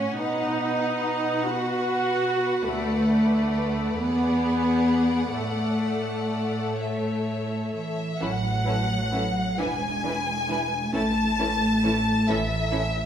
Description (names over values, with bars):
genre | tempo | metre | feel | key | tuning
classical, slow romantic movement for string orchestra | 41-50 BPM (dotted quarters) | 6/8 | rubato | A major | A4 = 439 Hz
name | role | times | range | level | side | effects
clear chamber violin section | melody | 0.0-13.1 s | E5 to A5 | -30 LUFS | left 2 dB | none
rich chamber violin section | second line | 0.0-12.8 s | E4 to F#5 | -32 LUFS | left 3 dB | none
warm chamber viola section | accompaniment | 0.0-12.8 s | E3 to F#4 | -26 LUFS | equal | none
warm studio cello section | bass | 0.0-13.1 s | D2 to A3 | -29 LUFS | right 1 dB | none
clear chamber double bass section | bass | 8.2-13.1 s | E1 to A1 | -30 LUFS | right 2 dB | none
room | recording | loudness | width
wet recital hall reverb, RT60 1.6 s | heard from further back in the room | -22 LUFS | side -9 dB against mid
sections
0.0-8.2 A section; 8.2-13.1 B section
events
none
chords
0.2 B; 2.7 Bm7/D; 4.0 E9; 5.4 A; 8.2 N.C.; 9.6 E; 10.9 A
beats
| 0.21 1.47 | 2.68 3.98 | 5.36 6.79 | 8.22 9.60 | 10.95 12.30